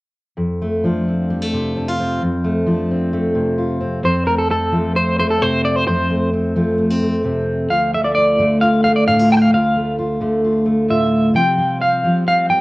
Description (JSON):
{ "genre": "folk", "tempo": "131 BPM", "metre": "4/4", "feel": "straight", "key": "unclear", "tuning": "A4 = 441 Hz", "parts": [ { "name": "fingerpicked steel-string acoustic guitar", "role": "accompaniment", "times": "0.4-12.6 s", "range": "D2 to F4", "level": "-16 LUFS", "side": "equal", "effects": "cassette tape" }, { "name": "electric guitar at the edge of break-up", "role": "melody", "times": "4.1-12.6 s", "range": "A4 to A5", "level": "-16 LUFS", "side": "equal", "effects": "tremolo, plate reverb" } ], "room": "wet studio reverb, RT60 0.6 s", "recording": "home recording on cassette", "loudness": "-15 LUFS", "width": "side -20 dB against mid", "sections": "0.4-4.0 A section; 4.0-12.6 B section", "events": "none", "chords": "0.4 F; 7.7 Dm; 11.3 Csus4", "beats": "| 0.39 0.84 1.30 1.75 | 2.21 2.66 3.12 3.58 | 4.03 4.49 4.95 5.41 | 5.86 6.32 6.78 7.24 | 7.69 8.15 8.61 9.06 | 9.52 9.97 10.43 10.89 | 11.34 11.80 12.25" }